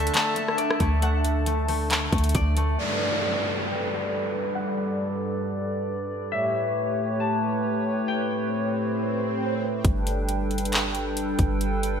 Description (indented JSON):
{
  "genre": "hip hop, atmospheric cloud-rap",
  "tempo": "136 BPM",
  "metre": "4/4",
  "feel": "half-time",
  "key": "G lydian",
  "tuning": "A4 = 441 Hz",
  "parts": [
    { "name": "concert harp", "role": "melody", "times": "0.0-9.6 s", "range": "D5 to A5", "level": "-31 LUFS", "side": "left 3 dB", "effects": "low-pass filter, ping-pong delay" },
    { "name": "hollow soft pad", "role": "sustained chords", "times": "0.0-12.0 s", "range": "G2 to A5", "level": "-27 LUFS", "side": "right 1 dB", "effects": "chorus, sidechain pumping, low-pass filter" },
    { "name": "concert harp", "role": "arpeggios", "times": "0.0-5.9 s", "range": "A3 to D5", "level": "-32 LUFS", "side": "left 5 dB", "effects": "ping-pong delay" },
    { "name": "soft 808-style bass", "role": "bass", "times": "0.0-2.8, 9.8-12.0 s", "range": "G1 to D2", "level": "-25 LUFS", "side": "equal", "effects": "none" },
    { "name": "trap drum kit", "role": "drums", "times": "0.0-2.7, 9.8-11.9 s", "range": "handclaps, hi-hat, kick drum, rim click", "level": "-25 LUFS", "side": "equal", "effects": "gated reverb" },
    { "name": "downlifter and swell", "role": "sound effects", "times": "2.8-9.8 s", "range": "none", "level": "-31 LUFS", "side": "right 1 dB", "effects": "none" }
  ],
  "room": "moderate lush hall reverb, RT60 1.8 s, digital ambience",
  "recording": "bright 1980s-style digital production",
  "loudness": "-23 LUFS",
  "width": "side -7 dB against mid",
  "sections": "0.0-2.8 A section; 2.8-9.8 B section; 9.8-12.0 C section",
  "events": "filter sweep 2.8-9.8; swell 8.4-9.8",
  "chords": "0.0 D; 2.8 Gadd9; 6.3 A7; 9.8 Gadd9"
}